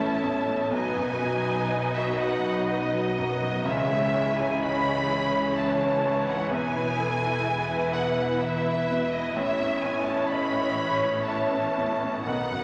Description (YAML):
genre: cinematic, emotional film score for orchestra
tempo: 62 BPM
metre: 3/4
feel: rubato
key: A lydian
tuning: A4 = 440 Hz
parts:
  - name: rich studio violin section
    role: melody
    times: 0.0-12.6 s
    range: D#5 to B5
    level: -33 LUFS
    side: equal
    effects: none
  - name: dark clarinet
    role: second line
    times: 0.0-12.6 s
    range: G#4 to F#5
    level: -34 LUFS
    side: equal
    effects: none
  - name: dark studio violin section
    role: second line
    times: 0.0-12.6 s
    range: E4 to F#5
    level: -34 LUFS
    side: equal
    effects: none
  - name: clear grand piano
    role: accompaniment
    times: 0.0-12.6 s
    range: A1 to E5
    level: -33 LUFS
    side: equal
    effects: none
  - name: rich studio viola section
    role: accompaniment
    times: 0.0-12.6 s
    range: D#3 to E4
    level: -37 LUFS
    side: equal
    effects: none
  - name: mellow French horn section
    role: sustained chords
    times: 0.0-12.6 s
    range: D#3 to D#4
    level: -36 LUFS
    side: equal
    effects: none
  - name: dark studio double bass section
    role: bass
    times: 0.0-12.6 s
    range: E1 to C#2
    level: -38 LUFS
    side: equal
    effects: none
  - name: warm studio cello section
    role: bass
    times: 0.0-12.6 s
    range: E2 to C#3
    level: -40 LUFS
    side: equal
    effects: none
room: wet scoring stage reverb, RT60 2.0 s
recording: none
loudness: -26 LUFS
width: mono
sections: 0.0-12.6 A section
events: none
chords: 0.0 A; 0.7 B; 3.6 C#m; 6.5 E; 9.4 A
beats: | 0.73 1.72 2.68 | 3.65 4.61 5.58 | 6.52 7.46 8.41 | 9.36 10.31 11.28 | 12.24